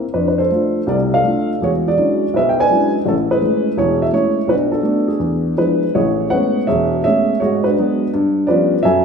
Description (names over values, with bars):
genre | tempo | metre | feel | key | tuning
solo jazz | 166 BPM | 4/4 | swing 66% on 8ths, rubato | A major | A4 = 441 Hz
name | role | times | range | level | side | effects
dark upright piano | solo | 0.0-9.0 s | E1 to G#5 | -14 LUFS | equal | none
room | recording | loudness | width
wet large studio reverb, RT60 1.5 s | band playing live in one room | -14 LUFS | side -6 dB against mid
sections
0.0-6.0 A section; 6.0-9.0 B section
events
none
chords
0.2 F6; 1.6 E13; 3.1 Amaj7; 4.5 Bm7; 5.2 E7b9; 6.0 Amaj9; 7.4 G#m7b5; 8.1 G7#11